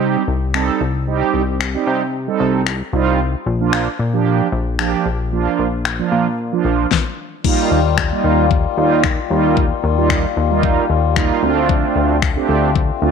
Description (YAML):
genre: dance-pop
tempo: 113 BPM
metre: 4/4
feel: straight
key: unclear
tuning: A4 = 441 Hz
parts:
  - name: mellow synth brass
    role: accompaniment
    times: 0.0-13.1 s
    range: F3 to A4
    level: -18 LUFS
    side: right 8 dB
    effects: chorus, sidechain pumping
  - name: chorused synth bass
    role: bass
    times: 0.0-13.1 s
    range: Bb1 to C3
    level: -19 LUFS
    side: left 2 dB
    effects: sidechain pumping
  - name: pop drum kit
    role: drums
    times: 0.5-12.9 s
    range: crash cymbal, finger snaps, kick drum, snare drum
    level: -19 LUFS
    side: left 5 dB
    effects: none
  - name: pedal harmonium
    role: sustained chords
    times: 7.4-13.1 s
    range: D3 to F4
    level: -20 LUFS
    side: left 14 dB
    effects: sidechain pumping
room: moderate plate reverb, RT60 1.5 s, digital ambience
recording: 1960s-style stereo with parts hard left and right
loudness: -15 LUFS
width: side -6 dB against mid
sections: 0.0-7.4 A section; 7.4-13.1 B section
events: none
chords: 0.0 Cm; 3.2 Bb; 7.4 Ebadd9; 11.4 Dm7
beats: 0.01 0.54 | 1.07 1.60 2.14 2.67 | 3.20 3.73 4.26 4.79 | 5.32 5.85 6.38 6.92 | 7.45 7.98 8.51 9.04 | 9.57 10.10 10.63 11.16 | 11.69 12.22 12.76